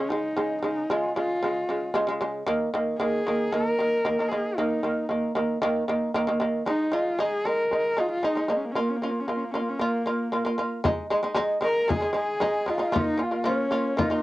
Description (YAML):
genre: mongolian traditional, Mongolian folk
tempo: 115 BPM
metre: 4/4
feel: straight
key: unclear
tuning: A4 = 441 Hz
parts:
  - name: clear horsehead fiddle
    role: melody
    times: 0.0-14.2 s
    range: Bb3 to Bb4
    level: -27 LUFS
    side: equal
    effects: cassette tape
  - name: shamisen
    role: arpeggios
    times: 0.0-14.2 s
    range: Db3 to F4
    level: -25 LUFS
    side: right 1 dB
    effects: cassette tape
  - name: frame drum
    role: percussion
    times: 10.8-14.1 s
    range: none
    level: -28 LUFS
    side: left 2 dB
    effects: none
  - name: breathy bright xiao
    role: second line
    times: 11.6-14.2 s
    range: Db5 to Db6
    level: -30 LUFS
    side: left 2 dB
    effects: cassette tape
room: light reverb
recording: home recording on cassette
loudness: -23 LUFS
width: side -17 dB against mid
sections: 0.0-10.9 A section; 10.9-14.2 B section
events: none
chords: 0.0 Db5; 2.5 Eb5; 6.7 Ab5; 8.8 Bb5; 10.9 Ab5; 12.9 Bb5